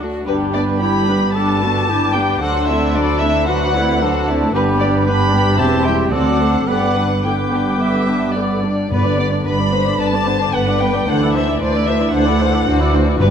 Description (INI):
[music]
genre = quick classical-period movement for symphony orchestra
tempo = 112 BPM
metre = 4/4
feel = rubato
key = G major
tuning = A4 = 440 Hz
[part]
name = muted chamber violin section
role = second line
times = 0.0-13.3 s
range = B3 to E5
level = -24 LUFS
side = left 2 dB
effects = none
[part]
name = muted chamber viola section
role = accompaniment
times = 0.0-13.3 s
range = D3 to D5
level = -21 LUFS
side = right 1 dB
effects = none
[part]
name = muted chamber cello section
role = bass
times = 0.0-13.3 s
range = D2 to G2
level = -22 LUFS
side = right 2 dB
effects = none
[part]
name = muted studio double bass section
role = bass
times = 0.0-13.3 s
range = E1 to D2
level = -22 LUFS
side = right 2 dB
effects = none
[part]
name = muted chamber violin section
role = melody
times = 0.3-13.3 s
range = B4 to B5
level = -21 LUFS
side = left 4 dB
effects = none
[part]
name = bright flute section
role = second line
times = 0.3-8.6 s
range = A5 to D6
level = -26 LUFS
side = right 2 dB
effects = none
[part]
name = mellow cor anglais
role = second line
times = 0.3-8.6 s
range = G4 to B4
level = -24 LUFS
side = right 3 dB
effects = none
[part]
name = warm clarinet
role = second line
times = 0.3-8.6 s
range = B3 to F#4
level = -22 LUFS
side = left 2 dB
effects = none
[part]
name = warm French horn section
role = sustained chords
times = 8.9-13.3 s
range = D3 to D4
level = -22 LUFS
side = left 2 dB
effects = none
[part]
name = timpani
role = percussion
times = 8.9-9.7, 13.2-13.3 s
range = G2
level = -20 LUFS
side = left 1 dB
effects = none
[sound]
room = wet scoring stage reverb, RT60 1.5 s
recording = none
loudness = -14 LUFS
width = side -8 dB against mid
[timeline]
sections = 0.0-8.9 A section; 8.9-13.3 A section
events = none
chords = 0.3 G; 2.4 D9; 4.5 G; 5.6 C/E; 6.1 D7; 6.7 G; 11.1 D9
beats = | 0.27 0.82 1.36 1.90 | 2.43 2.96 3.49 4.02 | 4.54 5.07 5.59 6.12 | 6.68 7.25 7.80 8.36 | 8.92 9.47 10.01 10.54 | 11.08 11.61 12.14 12.68 | 13.20